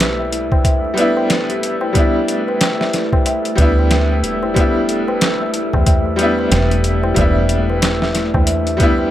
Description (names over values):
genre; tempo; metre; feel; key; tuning
trip hop; 92 BPM; 4/4; swing 60% on 16ths; E minor; A4 = 439 Hz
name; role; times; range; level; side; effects
bright upright piano; accompaniment; 0.0-9.1 s; G3 to E4; -19 LUFS; left 1 dB; tremolo, tape echo
large celesta; arpeggios; 0.0-9.1 s; E4 to E5; -21 LUFS; left 1 dB; digital delay
deep dub fingered electric bass; bass; 0.0-9.1 s; E1 to E2; -18 LUFS; equal; none
boom bap sampler-style drum kit; drums; 0.0-9.0 s; hi-hat, kick drum, snare drum; -17 LUFS; equal; none
wind-like tuned noise texture; texture; 0.0-9.1 s; A3 to A4; -26 LUFS; right 1 dB; built-in reverb
tabla; percussion; 0.2-9.1 s; none; -28 LUFS; left 3 dB; none
room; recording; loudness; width
light reverb; none; -13 LUFS; side -12 dB against mid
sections
0.0-9.1 A section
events
none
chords
0.0 Em7